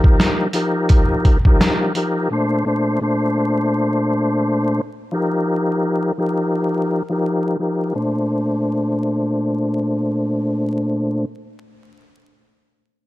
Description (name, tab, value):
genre	hip hop, boom-bap hip-hop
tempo	85 BPM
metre	4/4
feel	swing 60% on 16ths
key	Bb major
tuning	A4 = 440 Hz
part	tonewheel organ	accompaniment	0.0-11.3 s	Bb2 to C5	-18 LUFS	left 1 dB	chorus vibrato, stopped rotary speaker, cassette tape, high-pass filter, low-pass filter
part	trip hop sampler-style drum kit	drums	0.0-2.1 s	hi-hat, kick drum, snare drum	-14 LUFS	equal	none
room	little or no reverb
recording	dark, warm production, vinyl crackle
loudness	-17 LUFS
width	side -16 dB against mid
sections	0.0-8.0 A section; 8.0-10.8 B section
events	filter sweep on tonewheel organ 0.0-8.0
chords	0.0 F9sus4; 2.3 Bbmaj9; 5.1 F9sus4; 8.0 Bbmaj9